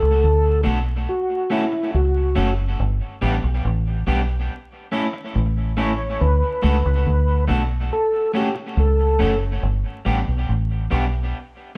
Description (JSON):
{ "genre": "roots reggae", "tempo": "70 BPM", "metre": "4/4", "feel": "straight", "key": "unclear", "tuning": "A4 = 440 Hz", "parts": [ { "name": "mellow tonewheel organ", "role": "melody", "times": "0.0-9.4 s", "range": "E4 to C#5", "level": "-24 LUFS", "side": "equal", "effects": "overdrive, chorus vibrato, slow rotary speaker" }, { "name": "deep dub fingered electric bass", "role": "bass", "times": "0.0-11.3 s", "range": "F#1 to D2", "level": "-22 LUFS", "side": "equal", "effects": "none" }, { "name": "electric guitar at the edge of break-up", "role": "accompaniment", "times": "0.6-11.0 s", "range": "G3 to A4", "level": "-28 LUFS", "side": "equal", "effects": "tape echo" } ], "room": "moderate studio reverb, RT60 0.7 s", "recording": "band playing live in one room, vinyl crackle", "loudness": "-21 LUFS", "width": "mono", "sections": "0.0-11.8 A section", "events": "none", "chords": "0.0 D; 1.1 F#m; 2.8 G; 4.5 A; 6.2 D; 7.9 F#m; 9.6 G" }